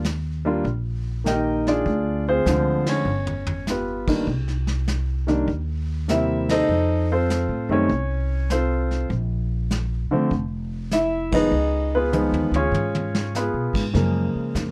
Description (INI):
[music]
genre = jazz piano trio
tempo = 99 BPM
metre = 4/4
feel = swing 68% on 8ths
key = unclear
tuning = A4 = 436 Hz
[part]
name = upright bass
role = bass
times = 0.0-14.7 s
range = F1 to Cb3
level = -27 LUFS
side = equal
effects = none
[part]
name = vintage brush drum kit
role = drums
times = 0.0-14.7 s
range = brushed snare drum, crash cymbal, hi-hat, kick drum, ride cymbal, snare drum, toms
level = -31 LUFS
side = equal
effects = none
[part]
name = warm grand piano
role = melody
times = 0.5-14.7 s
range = C3 to G5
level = -24 LUFS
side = equal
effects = none
[sound]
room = little or no reverb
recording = dark, warm production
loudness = -23 LUFS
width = mono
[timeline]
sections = 0.0-13.9 A section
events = band accent 2.8-3.1, 6.4-6.7, 11.2-11.5; drum fill 3.1-3.7, 12.1-13.3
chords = 0.0 Ebmaj7; 1.9 Dm7b5; 3.1 G7; 4.3 Cm7; 6.7 F7; 9.1 Bb5; 11.5 Db9; 13.9 F#maj9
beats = 0.04 0.65 1.25 | 1.85 2.46 3.06 3.67 | 4.27 4.87 5.48 6.08 | 6.68 7.29 7.89 8.50 | 9.10 9.71 10.31 10.92 | 11.52 12.13 12.73 13.34 | 13.94 14.55